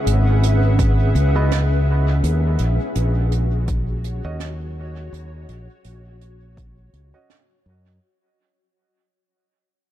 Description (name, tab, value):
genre	ambient dub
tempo	83 BPM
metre	4/4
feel	swing 56% on 16ths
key	unclear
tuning	A4 = 440 Hz
part	granular cloud pad	sustained chords	0.0-8.0 s	C#4 to F#5	-26 LUFS	equal	built-in reverb
part	fingered electric bass	bass	0.1-8.0 s	G#1 to F#2	-18 LUFS	equal	none
part	jazz brush drum kit	drums	0.1-7.5 s	hi-hat, snare drum	-33 LUFS	right 8 dB	dub echo
part	electronic kick drum	drums	0.8-6.7 s	none	-21 LUFS	equal	none
part	clear upright piano	stabs	1.4-7.4 s	B3 to D#5	-33 LUFS	right 4 dB	low-pass filter, dub echo
room	small room ambience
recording	dark, warm production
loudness	-16 LUFS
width	side -12 dB against mid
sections	0.0-8.0 A section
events	fade-out 0.0-8.0; filter sweep on fingered electric bass 0.0-8.0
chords	0.0 C#m11; 2.2 D#m7